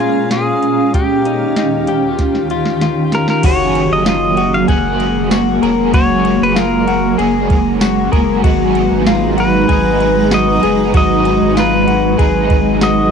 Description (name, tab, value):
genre	dream pop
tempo	96 BPM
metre	4/4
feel	straight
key	unclear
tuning	A4 = 440 Hz
part	pedal steel guitar	melody	0.0-13.1 s	G4 to F#5	-18 LUFS	left 1 dB	tape echo
part	granular cloud pad	sustained chords	0.0-13.1 s	D#2 to A#5	-15 LUFS	right 1 dB	built-in reverb
part	direct-recorded clean electric guitar	arpeggios	0.0-13.1 s	D#4 to A#4	-19 LUFS	left 10 dB	wide subtle chorus, tape echo
part	soft vintage rhythm box	drums	0.3-13.0 s	crash cymbal, hi-hat, kick drum, ride cymbal, snare drum, tambourine	-16 LUFS	right 1 dB	vintage 12-bit sampler grit, cassette tape
part	crunchy overdriven guitar	accompaniment	3.4-13.1 s	G#2 to G#4	-20 LUFS	right 12 dB	tremolo, ensemble chorus
part	saturated sub bass	bass	3.4-13.1 s	E#1 to G#1	-21 LUFS	right 1 dB	none
room	light reverb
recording	home recording on cassette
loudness	-11 LUFS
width	side -6 dB against mid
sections	0.0-3.4 A section; 3.4-13.1 B section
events	drum fill 2.2-3.4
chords	0.0 A#m7; 0.9 D#9; 3.4 F#add9; 8.4 G#m7